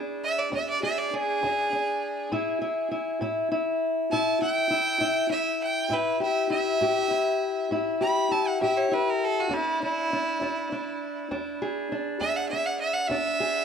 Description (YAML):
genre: acoustic country blues, solo or duo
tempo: 67 BPM (dotted quarters)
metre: 12/8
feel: straight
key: E mixolydian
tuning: A4 = 436 Hz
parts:
  - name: fingerpicked steel-string acoustic guitar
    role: accompaniment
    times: 0.0-13.6 s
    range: E2 to G#4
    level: -27 LUFS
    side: left 2 dB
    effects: none
  - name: clear fiddle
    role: melody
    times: 0.2-13.6 s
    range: E4 to B5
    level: -27 LUFS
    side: right 2 dB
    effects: plate reverb, tape echo
room: moderate studio reverb, RT60 0.8 s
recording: dark, warm production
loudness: -24 LUFS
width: side -7 dB against mid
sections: 0.0-13.6 A section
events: fiddle solo 0.0-13.6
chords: 0.0 E7; 2.3 A5; 9.5 E7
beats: 0.52 1.42 | 2.32 3.21 4.11 5.01 | 5.91 6.81 7.71 8.61 | 9.51 10.40 11.30 12.20 | 13.10